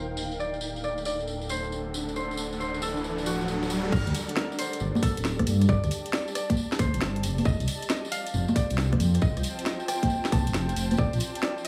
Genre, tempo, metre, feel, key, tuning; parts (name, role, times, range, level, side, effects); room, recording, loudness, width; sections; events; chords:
UK garage, two-step garage; 136 BPM; 4/4; swing 66% on 16ths; G minor; A4 = 443 Hz
concert harp; melody; 0.0-11.7 s; F#4 to A5; -36 LUFS; equal; digital delay
dark detuned saw bass; bass; 0.0-11.2 s; D1 to G2; -31 LUFS; equal
granular cloud pad; texture; 0.0-11.7 s; D4 to A5; -38 LUFS; equal; built-in reverb, sidechain pumping
tambourine; percussion; 0.2-11.7 s; -41 LUFS; equal
riser; sound effects; 1.8-3.9 s; -37 LUFS; equal
electronic kick drum; drums; 3.9-11.1 s; -28 LUFS; equal
garage drum kit; drums; 3.9-11.7 s; congas, crash cymbal, hi-hat, rim click, snare drum; -32 LUFS; equal
light reverb; low-pass filter, small room reverb; -27 LUFS; mono
0.0-3.9 A section; 3.9-11.7 B section
riser 1.8-3.9; drop 3.9-11.7
0.2 D7; 3.9 Gsus2; 7.2 Fadd9; 11.0 Ebadd9